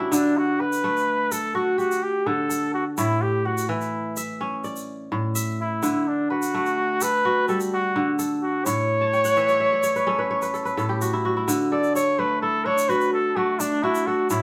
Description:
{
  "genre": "west african traditional, West African string and xylophone music",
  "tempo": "85 BPM (dotted quarters)",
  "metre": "12/8",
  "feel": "straight",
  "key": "D major",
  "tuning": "A4 = 440 Hz",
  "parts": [
    { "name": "clear flugelhorn", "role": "melody", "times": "0.0-14.4 s", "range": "D4 to D5", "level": "-25 LUFS", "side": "equal", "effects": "none" },
    { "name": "kora", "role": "arpeggios", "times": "0.0-14.4 s", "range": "A2 to A5", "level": "-26 LUFS", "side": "equal", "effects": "none" },
    { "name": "egg shaker", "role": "percussion", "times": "0.1-14.4 s", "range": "none", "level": "-36 LUFS", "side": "equal", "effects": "none" }
  ],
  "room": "wet studio reverb, RT60 0.8 s",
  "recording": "band playing live in one room",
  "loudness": "-23 LUFS",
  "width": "mono",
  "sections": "0.1-11.5 A section; 11.5-14.4 B section",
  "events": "kora fill 9.0-11.5; flugelhorn solo 11.5-14.4",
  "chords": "0.1 D; 3.0 A; 5.8 D; 8.7 A; 11.5 D"
}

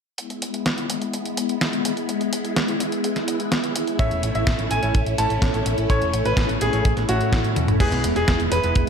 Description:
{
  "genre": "italo disco",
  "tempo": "126 BPM",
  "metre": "4/4",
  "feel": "straight",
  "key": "E major",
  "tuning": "A4 = 440 Hz",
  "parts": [
    { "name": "phased string machine", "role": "sustained chords", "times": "0.2-8.9 s", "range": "G#3 to E4", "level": "-25 LUFS", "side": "left 1 dB", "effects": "ensemble chorus, phaser" },
    { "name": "detuned 8-bit digital drum machine", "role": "drums", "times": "0.2-8.9 s", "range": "crash cymbal, hi-hat, snare drum, toms", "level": "-26 LUFS", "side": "equal", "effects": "overdrive, gated reverb" },
    { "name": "bright grand piano", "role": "melody", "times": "4.0-8.8 s", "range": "F#4 to A5", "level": "-25 LUFS", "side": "equal", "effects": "tape echo" },
    { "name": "clear electric grand piano", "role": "stabs", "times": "4.0-8.8 s", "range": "G#3 to C#5", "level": "-31 LUFS", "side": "right 2 dB", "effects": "none" },
    { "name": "hollow-body short-scale fingered electric bass", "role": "bass", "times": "4.0-8.9 s", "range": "E1 to A2", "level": "-24 LUFS", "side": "equal", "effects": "none" },
    { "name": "kick drum", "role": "drums", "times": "4.0-8.9 s", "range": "none", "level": "-20 LUFS", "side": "equal", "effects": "none" },
    { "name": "swell", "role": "sound effects", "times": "7.0-7.8 s", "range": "none", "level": "-36 LUFS", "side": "left 2 dB", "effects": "none" }
  ],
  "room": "light reverb",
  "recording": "none",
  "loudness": "-19 LUFS",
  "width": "side -6 dB against mid",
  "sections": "0.2-7.8 A section; 7.8-8.9 B section",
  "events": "swell 7.0-7.8; drum fill 7.6",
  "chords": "0.2 E; 4.0 A; 7.8 E"
}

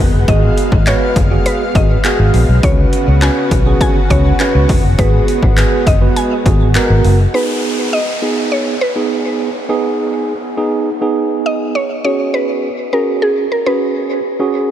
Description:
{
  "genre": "dance-pop",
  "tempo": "102 BPM",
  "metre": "4/4",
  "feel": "straight",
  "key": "G# dorian",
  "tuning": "A4 = 440 Hz",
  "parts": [
    { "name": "mallet-like synth pluck", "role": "melody", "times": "0.0-14.1 s", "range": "G#4 to G#5", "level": "-20 LUFS", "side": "left 1 dB", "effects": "chorus, diffuse ambient delay" },
    { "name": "tine electric piano", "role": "accompaniment", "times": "0.0-14.7 s", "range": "B3 to B4", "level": "-17 LUFS", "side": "right 4 dB", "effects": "medium stereo tremolo, sidechain pumping" },
    { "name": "lush unison pad", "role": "sustained chords", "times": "0.0-7.3 s", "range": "C#3 to F#5", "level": "-22 LUFS", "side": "left 1 dB", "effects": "chorus, sidechain pumping" },
    { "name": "vintage muted fingered electric bass", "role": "bass", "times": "0.0-7.2 s", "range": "E#1 to C#2", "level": "-13 LUFS", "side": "equal", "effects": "sidechain pumping" },
    { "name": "punchy analog drum machine", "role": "drums", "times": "0.3-7.2 s", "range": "handclaps, hi-hat, kick drum", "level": "-14 LUFS", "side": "left 1 dB", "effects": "overdrive" },
    { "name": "downlifter", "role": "sound effects", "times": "7.3-12.0 s", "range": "none", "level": "-26 LUFS", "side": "left 1 dB", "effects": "none" }
  ],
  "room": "moderate huge ambient reverb, RT60 7.7 s",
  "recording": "dreamy mix soaked in reverb",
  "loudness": "-11 LUFS",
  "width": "side -11 dB against mid",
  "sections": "0.0-7.3 A section; 7.3-14.7 B section",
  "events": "none",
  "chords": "0.0 G#m7; 2.6 C#7sus4; 5.0 G#m7; 7.3 G#m; 12.0 F#sus2"
}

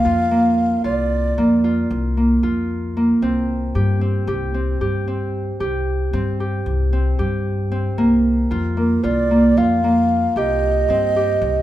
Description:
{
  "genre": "contemporary instrumental, chamber music in an uneven meter",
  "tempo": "227 BPM (eighths)",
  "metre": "9/8",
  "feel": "straight",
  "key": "C minor",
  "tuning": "A4 = 440 Hz",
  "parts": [
    { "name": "mellow baroque flute", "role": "melody", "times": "0.0-1.9, 8.8-11.6 s", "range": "Bb4 to F5", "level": "-20 LUFS", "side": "right 1 dB", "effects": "none" },
    { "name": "Celtic harp", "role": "arpeggios", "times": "0.0-11.6 s", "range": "Bb3 to G4", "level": "-19 LUFS", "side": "right 1 dB", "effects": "none" },
    { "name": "upright bass", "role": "bass", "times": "0.1-11.6 s", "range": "C2 to G2", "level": "-22 LUFS", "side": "left 1 dB", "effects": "none" }
  ],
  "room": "wet recital hall reverb, RT60 1.6 s",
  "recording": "minimal, uncompressed stereo recording",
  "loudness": "-16 LUFS",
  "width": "side -13 dB against mid",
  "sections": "0.0-11.6 A section",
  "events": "none",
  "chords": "0.0 Bb/C; 3.2 C5"
}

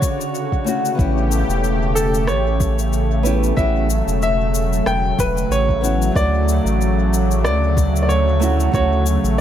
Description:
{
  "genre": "sunset chillout",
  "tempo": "93 BPM",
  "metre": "4/4",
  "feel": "swing 56% on 16ths",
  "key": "D major",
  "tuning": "A4 = 440 Hz",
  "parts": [
    { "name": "clear grand piano", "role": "melody", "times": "0.0-9.4 s", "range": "A4 to G5", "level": "-23 LUFS", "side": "equal", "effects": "analog delay" },
    { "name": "lush unison pad", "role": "sustained chords", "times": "0.0-9.4 s", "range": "C#3 to G4", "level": "-22 LUFS", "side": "right 1 dB", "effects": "chorus" },
    { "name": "electronic cabasa and rim click", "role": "drums", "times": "0.0-9.4 s", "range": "none", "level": "-29 LUFS", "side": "left 3 dB", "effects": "small room ambience, tape echo" },
    { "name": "electronic kick drum", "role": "drums", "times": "0.0-8.9 s", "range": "none", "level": "-20 LUFS", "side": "equal", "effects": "overdrive, small room ambience" },
    { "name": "nylon-string guitar", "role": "accompaniment", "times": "0.6-9.0 s", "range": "C#3 to G4", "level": "-25 LUFS", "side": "moving between left 5 dB and right 6 dB", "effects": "auto-pan, analog delay" },
    { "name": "warm sub bass", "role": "bass", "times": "1.0-9.4 s", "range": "E1 to D2", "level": "-19 LUFS", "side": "equal", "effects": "none" }
  ],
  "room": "light reverb, digital ambience",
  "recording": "echo-heavy mix",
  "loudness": "-15 LUFS",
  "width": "side -10 dB against mid",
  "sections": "0.0-9.4 A section",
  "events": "none",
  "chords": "0.0 Dmaj7; 1.0 A9; 6.2 Dmaj7"
}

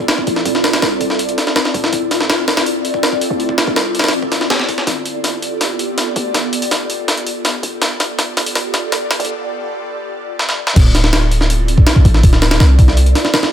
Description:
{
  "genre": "drum and bass, jungle",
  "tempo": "163 BPM",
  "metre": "4/4",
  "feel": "straight",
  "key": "D dorian",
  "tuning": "A4 = 440 Hz",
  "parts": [
    { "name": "warm 808-style bass", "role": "bass", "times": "0.0-13.1 s", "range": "D1 to G2", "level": "-14 LUFS", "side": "equal", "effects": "high-pass filter" },
    { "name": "breakbeat sampler-style drum kit", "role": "drums", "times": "0.0-13.5 s", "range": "crash cymbal, hi-hat, kick drum, snare drum", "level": "-14 LUFS", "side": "equal", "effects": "high-pass filter on kick, high-pass filter on hats, high-pass filter on snare, high-pass filter on cymbals" }
  ],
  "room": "light reverb",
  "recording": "high-pass filter",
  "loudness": "-12 LUFS",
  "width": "side -10 dB against mid",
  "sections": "0.0-10.8 A section; 10.8-13.5 B section",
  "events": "build-up 0.0-10.8; drum fill 4.9-9.3, 10.4-10.8; break 9.3-10.8; drop 10.8-13.5",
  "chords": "none"
}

